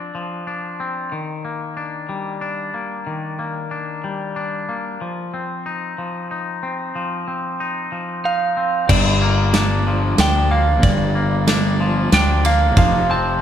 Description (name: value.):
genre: post-rock.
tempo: 93 BPM.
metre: 3/4.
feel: straight.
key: G minor.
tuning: A4 = 439 Hz.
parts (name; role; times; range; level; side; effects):
twangy electric guitar; arpeggios; 0.0-13.4 s; G2 to Eb4; -23 LUFS; left 3 dB; spring reverb.
electric slide guitar; melody; 8.3-13.4 s; D5 to A5; -21 LUFS; right 4 dB; none.
fuzz fingered electric bass; bass; 8.9-13.4 s; F1 to D2; -18 LUFS; equal; overdrive.
big rock drum kit; drums; 8.9-12.9 s; crash cymbal, kick drum, ride cymbal, snare drum; -19 LUFS; equal; none.
room: light reverb.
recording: none.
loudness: -18 LUFS.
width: side -10 dB against mid.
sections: 0.0-8.9 A section; 8.9-13.4 B section.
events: none.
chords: 0.0 Dm7/F; 1.1 Ebmaj7; 5.0 F5; 8.9 Gm7; 12.8 F6.